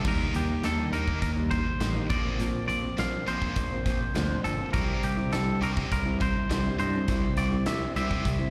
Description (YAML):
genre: quiet-loud alternative rock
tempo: 102 BPM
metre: 4/4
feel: straight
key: unclear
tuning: A4 = 440 Hz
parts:
  - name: twangy electric guitar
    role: melody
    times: 0.0-8.5 s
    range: G4 to F5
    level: -35 LUFS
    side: equal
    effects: slapback echo, digital delay
  - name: picked plugged-in steel-string acoustic guitar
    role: arpeggios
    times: 0.0-8.5 s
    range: Bb2 to E4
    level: -36 LUFS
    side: equal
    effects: slapback echo
  - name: high-gain distorted guitar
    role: riff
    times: 0.0-8.5 s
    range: Bb2 to Eb4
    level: -36 LUFS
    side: equal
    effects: distortion, slapback echo
  - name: growling picked electric bass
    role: bass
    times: 0.0-8.4 s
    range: G1 to G2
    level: -33 LUFS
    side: equal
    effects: overdrive
  - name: big rock drum kit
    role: drums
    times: 0.0-8.4 s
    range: crash cymbal, hi-hat, kick drum, snare drum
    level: -35 LUFS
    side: equal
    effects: none
room: small room ambience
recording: live gig heard through the venue's PA, recital hall reverb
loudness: -28 LUFS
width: mono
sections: 0.1-8.5 A section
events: none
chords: 0.1 Eb; 2.1 Bbsus2; 4.7 C